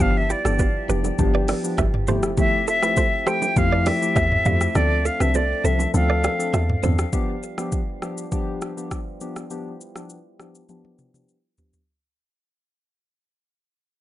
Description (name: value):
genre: afrobeats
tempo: 101 BPM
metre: 4/4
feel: straight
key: G mixolydian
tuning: A4 = 438 Hz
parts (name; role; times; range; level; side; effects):
- bright concert flute; melody; 0.0-6.8 s; D5 to G5; -24 LUFS; left 1 dB; ping-pong delay
- soft electric-piano-like synth keys; accompaniment; 0.0-11.8 s; F3 to A4; -27 LUFS; left 2 dB; chorus, low-pass filter
- dark French horn section; sustained chords; 0.0-11.9 s; F3 to A4; -33 LUFS; right 1 dB; low-pass filter
- deep log drum bass; bass; 0.0-7.1 s; F1 to F2; -22 LUFS; equal; none
- afro-pop drum kit; drums; 0.0-11.9 s; hi-hat, kick drum, rim click, shaker, toms; -25 LUFS; equal; none
- congas and bongos; percussion; 0.0-7.0 s; none; -31 LUFS; right 6 dB; none
- direct-recorded clean electric guitar; riff; 0.3-6.9 s; E4 to F5; -29 LUFS; right 6 dB; ping-pong delay
room: light reverb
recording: nothing above 10.9 kHz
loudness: -19 LUFS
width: side -14 dB against mid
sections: 0.0-7.1 A section; 7.1-11.9 B section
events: kick muted 4.8-7.1; fade-out 7.1-11.9; filter sweep 7.1-11.9; drum fill 10.7-11.9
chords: 0.0 G7; 2.1 Fmaj9; 4.8 Dm7; 7.1 G7